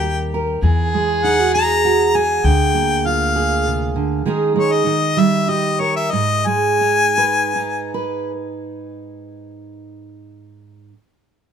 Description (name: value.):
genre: acoustic folk-pop ballad.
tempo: 98 BPM.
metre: 3/4.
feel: uneven beats.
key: G# harmonic minor.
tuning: A4 = 439 Hz.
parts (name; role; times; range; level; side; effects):
warm harmonica; melody; 0.0-8.0 s; C#5 to A#5; -18 LUFS; left 4 dB; none.
rich violin; second line; 0.0-2.4 s; G4 to G#4; -24 LUFS; right 1 dB; none.
fingerpicked steel-string acoustic guitar; accompaniment; 0.0-10.9 s; G#2 to B4; -19 LUFS; right 4 dB; none.
upright bass; bass; 0.0-4.2 s; D2 to E2; -21 LUFS; left 2 dB; none.
room: light reverb.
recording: minimal, uncompressed stereo recording.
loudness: -15 LUFS.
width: side -7 dB against mid.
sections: 0.0-8.4 A section.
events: slowing down 4.2-8.4.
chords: 0.0 D#; 0.6 Eadd9; 2.4 A#7/D; 4.2 D#7sus4; 4.8 D#; 6.1 G#m.